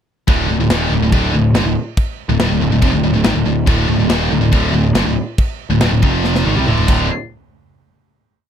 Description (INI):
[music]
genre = heavy metal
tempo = 141 BPM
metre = 4/4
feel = straight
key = D phrygian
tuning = A4 = 441 Hz
[part]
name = scooped high-gain guitar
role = riff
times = 0.3-7.1 s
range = D2 to G3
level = -18 LUFS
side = left 8 dB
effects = distortion
[part]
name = scooped high-gain guitar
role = riff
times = 0.3-7.1 s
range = D2 to G3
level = -19 LUFS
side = right 13 dB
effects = distortion
[part]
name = fuzz picked electric bass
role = bass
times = 0.3-7.1 s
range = D1 to C2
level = -18 LUFS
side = equal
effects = overdrive
[part]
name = tight metal drum kit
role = drums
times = 0.3-7.0 s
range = china cymbal, crash cymbal, kick drum, snare drum, toms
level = -18 LUFS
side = equal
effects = none
[sound]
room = little or no reverb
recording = dry, close 1970s-style studio recording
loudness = -13 LUFS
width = side -8 dB against mid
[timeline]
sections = 0.3-7.1 riff; 7.1-8.5 final hit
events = drum fill 6.2-7.1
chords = 0.3 D5; 6.0 F5; 6.5 D5; 7.1 N.C.